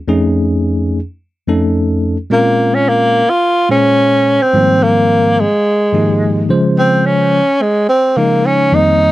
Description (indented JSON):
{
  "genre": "jazz",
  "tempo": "108 BPM",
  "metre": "4/4",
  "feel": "straight",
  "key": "Bb dorian",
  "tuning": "A4 = 440 Hz",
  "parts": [
    { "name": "bell-like tine electric piano", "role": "accompaniment", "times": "0.1-9.1 s", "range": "F2 to C5", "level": "-13 LUFS", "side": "left 1 dB", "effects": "fast stereo tremolo" },
    { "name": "breathy tenor saxophone", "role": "melody", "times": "2.3-9.1 s", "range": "Ab3 to F4", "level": "-11 LUFS", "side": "equal", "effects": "none" }
  ],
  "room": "light reverb",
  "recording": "dry, close 1970s-style studio recording",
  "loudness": "-10 LUFS",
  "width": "side -16 dB against mid",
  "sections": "0.0-2.3 A section; 2.3-9.1 B section",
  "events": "none",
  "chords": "0.1 F7alt; 2.3 Bbm9; 4.5 Abmaj13; 6.5 Dbmaj9"
}